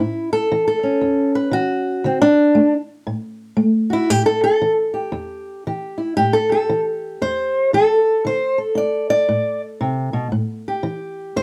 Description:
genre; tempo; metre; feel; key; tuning
acoustic country blues, solo or duo; 116 BPM; 4/4; swing 62% on 8ths; unclear; A4 = 441 Hz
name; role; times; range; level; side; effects
fingerpicked old ladder-braced acoustic guitar; solo; 0.0-11.4 s; E2 to D5; -19 LUFS; equal; none
room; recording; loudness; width
moderate studio reverb, RT60 0.5 s; none; -19 LUFS; mono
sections
0.0-11.4 A section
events
steel-string acoustic guitar solo 0.0-11.4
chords
0.0 A; 2.0 D; 4.1 A5; 8.2 D5; 10.3 A7(no3)

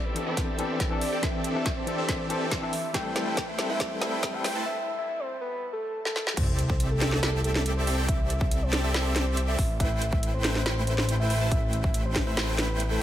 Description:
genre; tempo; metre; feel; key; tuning
future bass; 140 BPM; 4/4; half-time; A minor; A4 = 440 Hz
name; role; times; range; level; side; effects
shimmering ambient pad; sustained chords; 1.0-4.6 s; E3 to A4; -40 LUFS; right 2 dB; chorus, built-in reverb, phaser, sidechain pumping
supersaw chords; riff; 0.0-13.0 s; A3 to A5; -32 LUFS; equal; sidechain pumping, low-pass filter
soft octave-layered synth lead; melody; 0.1-13.0 s; A4 to G5; -34 LUFS; equal; chorus, sidechain pumping, ping-pong delay
overdriven tine electric piano; accompaniment; 0.1-4.4 s; E3 to A4; -34 LUFS; left 3 dB; fast tremolo, sidechain pumping, dub echo
trap drum kit; drums; 0.2-12.9 s; crash cymbal, hi-hat, snare drum; -31 LUFS; equal; high-pass filter on snare, studio ambience, high-pass filter on hats, high-pass filter on cymbals
electronic kick drum; drums; 0.4-12.2 s; none; -29 LUFS; equal; overdrive, studio ambience
fat analog bass; bass; 6.4-13.0 s; A1 to C2; -28 LUFS; equal; sidechain pumping
sub drop; sound effects; 6.4-8.1 s; none; -36 LUFS; equal; none
room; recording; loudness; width
light reverb, digital ambience; high-pass filter; -25 LUFS; side -12 dB against mid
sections
0.0-6.4 A section; 6.4-13.0 B section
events
build-up 0.0-6.4; drum fill 0.0-4.7, 6.1-6.4; break 4.7-6.4; drop 6.4-13.0; impact 6.4-8.1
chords
0.0 C69; 2.7 Am7; 6.2 N.C.; 6.4 C69; 9.6 Am7

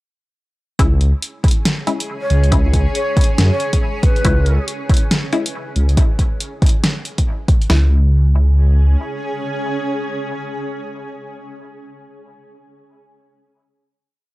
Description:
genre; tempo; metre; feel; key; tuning
deep dubstep; 139 BPM; 4/4; swing 61% on 16ths, half-time; C# minor; A4 = 442 Hz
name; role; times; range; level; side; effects
granular cloud pad; sustained chords; 1.6-12.0 s; C#4 to G#4; -27 LUFS; equal; built-in reverb
filtered dub chord stab; stabs; 0.8-12.2 s; G#3 to E4; -25 LUFS; left 2 dB; phaser, dub echo
dark detuned saw bass; bass; 0.8-9.0 s; C#2 to F#2; -12 LUFS; equal; transformer saturation
deep house drum kit; drums; 0.8-7.8 s; kick drum, snare drum; -15 LUFS; equal; none
deep house drum kit; drums; 0.8-7.7 s; hi-hat, snare drum; -21 LUFS; equal; none
long shakuhachi; melody; 2.2-4.6 s; B4 to C#5; -25 LUFS; equal; dub echo
room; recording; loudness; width
digital ambience; dry, gritty hardware recording, transformer saturation; -14 LUFS; side -19 dB against mid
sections
0.8-7.7 drop; 7.7-11.2 final chord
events
drop 0.8-7.7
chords
0.8 C#m

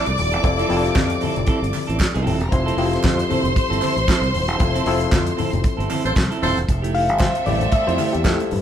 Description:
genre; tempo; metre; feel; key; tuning
disco; 115 BPM; 4/4; swing 56% on 16ths; F major; A4 = 440 Hz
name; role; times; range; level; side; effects
rich studio violin section; second line; 0.0-8.6 s; C4 to D6; -24 LUFS; equal; none
clean electric guitar; accompaniment; 0.0-8.6 s; A3 to A4; -27 LUFS; right 5 dB; none
overdriven reed electric piano; accompaniment; 0.0-8.6 s; E3 to F5; -24 LUFS; left 4 dB; none
fingered electric bass; bass; 0.1-8.6 s; Eb1 to G2; -24 LUFS; equal; none
damped 70s drum kit; drums; 0.1-8.6 s; handclaps, hi-hat, kick drum, snare drum; -22 LUFS; equal; none
congas; percussion; 0.2-8.6 s; none; -29 LUFS; left 4 dB; none
group handclap; percussion; 1.0-8.4 s; none; -36 LUFS; right 4 dB; none
warm horn section; stabs; 6.1-6.6 s; C4 to C5; -24 LUFS; right 1 dB; none
room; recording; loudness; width
moderate large studio reverb, RT60 1.1 s; band playing live in one room; -17 LUFS; side -9 dB against mid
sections
0.0-6.7 A section; 6.7-8.6 B section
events
band accent 4.6-6.7; reed electric piano solo 6.7-8.6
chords
0.0 Fmaj7; 6.7 Fmaj9

